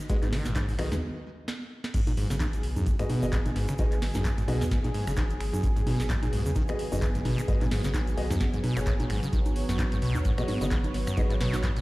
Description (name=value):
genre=acid house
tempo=130 BPM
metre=4/4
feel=swing 56% on 16ths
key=G# minor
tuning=A4 = 440 Hz
part: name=lush unison pad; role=sustained chords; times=0.0-11.8 s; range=F#3 to C#5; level=-36 LUFS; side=right 1 dB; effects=chorus, sidechain pumping
part: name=booming analog drum machine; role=drums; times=0.0-11.8 s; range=congas, crash cymbal, finger snaps, handclaps, hi-hat, snare drum, toms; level=-35 LUFS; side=right 1 dB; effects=none
part: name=acid bass, saw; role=riff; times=0.1-11.8 s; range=F#2 to G#3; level=-31 LUFS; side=equal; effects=overdrive, digital delay
part: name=dark concert grand piano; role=stabs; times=0.1-11.3 s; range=B3 to D#5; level=-35 LUFS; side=left 2 dB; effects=digital delay
part: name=warm sub bass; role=bass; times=0.1-11.8 s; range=F#1 to D#2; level=-32 LUFS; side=equal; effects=sidechain pumping
part: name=electronic kick drum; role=drums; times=0.1-11.7 s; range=none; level=-28 LUFS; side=equal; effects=none
part: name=tube shaker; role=percussion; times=0.1-11.8 s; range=none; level=-49 LUFS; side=right 1 dB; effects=none
room=little or no reverb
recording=played on a big sound system in a bare room, stone room reverb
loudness=-25 LUFS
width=side -20 dB against mid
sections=0.0-1.9 A section; 1.9-11.8 B section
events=break 1.0-1.9; drum fill 1.5-1.9; drop 1.9-11.8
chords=0.0 G#m7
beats=| 0.10 0.56 1.02 1.48 | 1.94 2.40 2.87 3.33 | 3.79 4.25 4.71 5.17 | 5.63 6.10 6.56 7.02 | 7.48 7.94 8.40 8.87 | 9.33 9.79 10.25 10.71 | 11.17 11.63